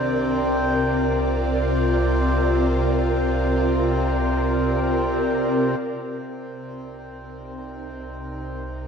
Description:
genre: ambient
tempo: free time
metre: none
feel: none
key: unclear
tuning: A4 = 439 Hz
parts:
  - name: ethereal airy pad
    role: sustained chords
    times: 0.0-8.9 s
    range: C3 to D5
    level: -22 LUFS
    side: equal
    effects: ensemble chorus, built-in reverb
  - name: soft synth bell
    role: arpeggios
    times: 0.0-5.8 s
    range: none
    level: barely audible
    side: none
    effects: none
  - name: deep rumbling drone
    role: bass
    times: 0.2-8.9 s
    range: C2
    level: -27 LUFS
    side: equal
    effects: built-in reverb, phaser
  - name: hand-pumped harmonium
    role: drone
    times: 0.0-8.9 s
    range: C3 to C4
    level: -28 LUFS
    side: left 1 dB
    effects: stereo widening
room: wet lush hall reverb, RT60 2.9 s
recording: none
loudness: -19 LUFS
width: side -6 dB against mid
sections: 0.0-5.8 A section; 5.8-8.9 B section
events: none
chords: 0.0 Bb/C; 5.8 Bbsus2/C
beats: free time

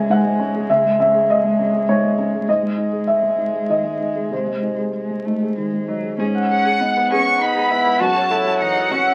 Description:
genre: neoclassical piano and strings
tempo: 100 BPM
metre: 3/4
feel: rubato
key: unclear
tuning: A4 = 440 Hz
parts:
  - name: warm cello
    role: second line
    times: 0.0-9.1 s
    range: F#3 to F#4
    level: -26 LUFS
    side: equal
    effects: none
  - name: dark upright piano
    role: accompaniment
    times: 0.0-9.1 s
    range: C#2 to G#5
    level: -21 LUFS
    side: equal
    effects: none
  - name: Celtic harp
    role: arpeggios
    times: 6.2-9.1 s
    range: F#4 to F#5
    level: -21 LUFS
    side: equal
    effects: none
  - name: rich chamber violin section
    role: melody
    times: 6.5-9.1 s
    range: F#5 to C#6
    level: -22 LUFS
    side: equal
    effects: none
room: moderate studio reverb, RT60 0.5 s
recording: very old 78 rpm record, vinyl crackle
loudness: -19 LUFS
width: mono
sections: 0.0-6.2 A section; 6.2-9.1 B section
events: none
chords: 0.0 C#m; 2.5 G#; 6.2 G#m7; 8.0 F#m7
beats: 0.10 | 0.69 1.28 1.87 | 2.46 3.07 3.69 | 4.31 4.94 5.57 | 6.19 6.80 7.41 | 8.01 8.61

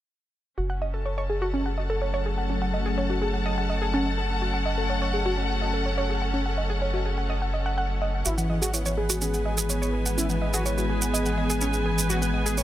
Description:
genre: melodic techno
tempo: 125 BPM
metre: 4/4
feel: straight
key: F# minor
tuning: A4 = 442 Hz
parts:
  - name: sweeping resonant pad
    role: sustained chords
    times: 0.6-12.6 s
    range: E3 to C#4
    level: -32 LUFS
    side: equal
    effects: chorus
  - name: woody wave-folded pluck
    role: arpeggios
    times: 0.6-12.6 s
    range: C#4 to F#5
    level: -30 LUFS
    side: right 1 dB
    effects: chorus, dub echo
  - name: round analog bass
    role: bass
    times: 0.6-12.6 s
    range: F#1 to G#1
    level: -28 LUFS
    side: equal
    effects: none
  - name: rich studio string section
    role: texture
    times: 0.6-12.6 s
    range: B3 to A5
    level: -31 LUFS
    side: left 1 dB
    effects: none
  - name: fat analog lead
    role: melody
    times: 8.3-12.6 s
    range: E3 to G#4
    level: -31 LUFS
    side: left 1 dB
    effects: tape echo
  - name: maracas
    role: percussion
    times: 8.3-12.6 s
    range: none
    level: -29 LUFS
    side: right 4 dB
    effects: none
room: light reverb, small room ambience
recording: none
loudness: -24 LUFS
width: side -13 dB against mid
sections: 0.6-12.6 A section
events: filter sweep on synth pluck 0.6-12.6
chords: 0.6 F#m; 8.3 E/G#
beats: | 0.58 1.06 1.54 2.02 | 2.50 2.98 3.46 3.94 | 4.42 4.90 5.38 5.86 | 6.34 6.82 7.30 7.78 | 8.26 8.74 9.22 9.70 | 10.18 10.66 11.14 11.62 | 12.10 12.58

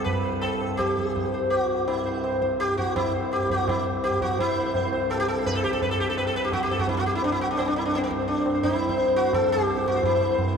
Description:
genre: indian classical, Hindustani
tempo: 168 BPM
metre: 4/4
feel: straight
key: C raga yaman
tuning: A4 = 438 Hz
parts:
  - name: sitar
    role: melody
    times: 0.0-10.6 s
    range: B3 to C5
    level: -24 LUFS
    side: equal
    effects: none
  - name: hand-pumped harmonium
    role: drone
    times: 0.0-10.6 s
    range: C2 to G2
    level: -31 LUFS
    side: equal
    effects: none
  - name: tabla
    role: percussion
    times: 0.1-10.5 s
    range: none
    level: -29 LUFS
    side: right 2 dB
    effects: none
room: wet cathedral reverb, RT60 4.4 s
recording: recorded in a church or concert hall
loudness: -22 LUFS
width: side -6 dB against mid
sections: 0.0-4.4 A section; 4.4-10.6 B section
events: speeding up 0.0-10.6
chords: none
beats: | 0.06 0.43 0.79 1.15 | 1.51 1.88 2.23 2.60 | 2.96 3.31 3.67 4.03 | 4.39 4.75 5.10 5.46 | 5.82 6.17 6.53 6.88 | 7.23 7.58 7.94 8.29 | 8.64 8.99 9.34 9.69 | 10.04 10.39

